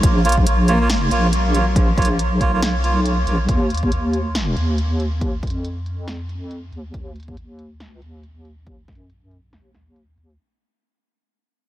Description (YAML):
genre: deep dubstep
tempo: 139 BPM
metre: 4/4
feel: swing 59% on 16ths, half-time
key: Bb phrygian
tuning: A4 = 441 Hz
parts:
  - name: deep soft wobble bass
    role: bass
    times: 0.0-10.4 s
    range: Bb1 to Gb2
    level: -20 LUFS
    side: equal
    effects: chorus
  - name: deep house drum kit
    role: drums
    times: 0.0-10.4 s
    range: hi-hat, snare drum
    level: -28 LUFS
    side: equal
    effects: low-pass filter on hats, low-pass filter on snare, low-pass filter on room
  - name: electronic kick drum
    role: drums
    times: 0.0-9.0 s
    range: none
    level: -19 LUFS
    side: equal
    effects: none
  - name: melodica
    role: stabs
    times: 0.2-3.4 s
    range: Bb3 to Db5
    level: -23 LUFS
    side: right 2 dB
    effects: dub echo
  - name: dark cello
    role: melody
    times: 0.7-2.2 s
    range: F3 to Bb3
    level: -28 LUFS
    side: left 1 dB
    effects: dub echo
room: moderate huge ambient reverb, RT60 7.2 s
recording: dreamy mix soaked in reverb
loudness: -16 LUFS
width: side -14 dB against mid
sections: 0.0-10.4 A section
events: fade-out 0.0-10.4; filter sweep on drum 0.0-10.4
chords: 0.0 Bbm; 3.5 N.C.